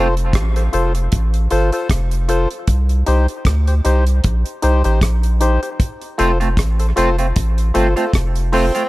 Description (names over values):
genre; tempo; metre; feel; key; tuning
dub reggae; 77 BPM; 4/4; swing 56% on 16ths; unclear; A4 = 439 Hz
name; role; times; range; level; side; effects
semi-hollow electric guitar; accompaniment; 0.0-0.1, 6.2-8.8 s; A3 to F4; -22 LUFS; right 2 dB; wide subtle chorus, dub echo
percussive organ stab; stabs; 0.0-8.7 s; Eb4 to C5; -21 LUFS; left 2 dB; chorus, dub echo
soft dub sub bass; bass; 0.0-8.7 s; F1 to D2; -16 LUFS; equal; none
damped 70s drum kit; drums; 0.2-8.9 s; hi-hat, kick drum, rim click; -20 LUFS; equal; none
raspy tenor saxophone; melody; 8.5-8.9 s; C4; -19 LUFS; right 2 dB; dub echo
room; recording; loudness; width
little or no reverb; none; -14 LUFS; side -19 dB against mid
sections
0.0-8.9 A section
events
break 0.0-5.8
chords
0.0 F; 2.7 Cm; 5.8 F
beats
0.34 1.12 1.90 | 2.68 3.46 4.24 5.02 | 5.80 6.58 7.36 8.14